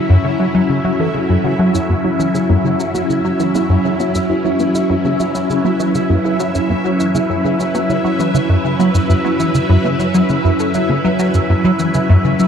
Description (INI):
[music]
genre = ambient, sequencer-driven space music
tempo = 100 BPM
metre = 4/4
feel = straight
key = F# minor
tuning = A4 = 440 Hz
[part]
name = phased string machine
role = sustained chords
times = 0.0-12.5 s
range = F#3 to B4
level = -17 LUFS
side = left 1 dB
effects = ensemble chorus, phaser
[part]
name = soft round pluck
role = arpeggios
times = 0.0-12.5 s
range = E4 to E5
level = -23 LUFS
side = moving between equal and right 6 dB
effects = chorus, auto-pan, ping-pong delay
[part]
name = bubbling stepped-filter texture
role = texture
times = 0.0-12.5 s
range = E5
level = -25 LUFS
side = equal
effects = chorus, built-in reverb
[part]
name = tight sequenced synth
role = riff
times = 0.1-12.5 s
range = F#2 to C#4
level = -16 LUFS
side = equal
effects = chorus, phaser, ping-pong delay
[part]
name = shaker and congas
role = percussion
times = 1.7-12.5 s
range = none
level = -29 LUFS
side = left 1 dB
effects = ping-pong delay
[sound]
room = wet huge ambient reverb, RT60 9.0 s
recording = dark, warm production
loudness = -13 LUFS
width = side -7 dB against mid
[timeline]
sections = 0.0-12.5 A section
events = none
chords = 0.0 F#m7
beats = 0.55 1.15 | 1.75 2.35 2.95 3.55 | 4.15 4.75 5.35 5.95 | 6.55 7.15 7.75 8.35 | 8.95 9.55 10.15 10.75 | 11.35 11.95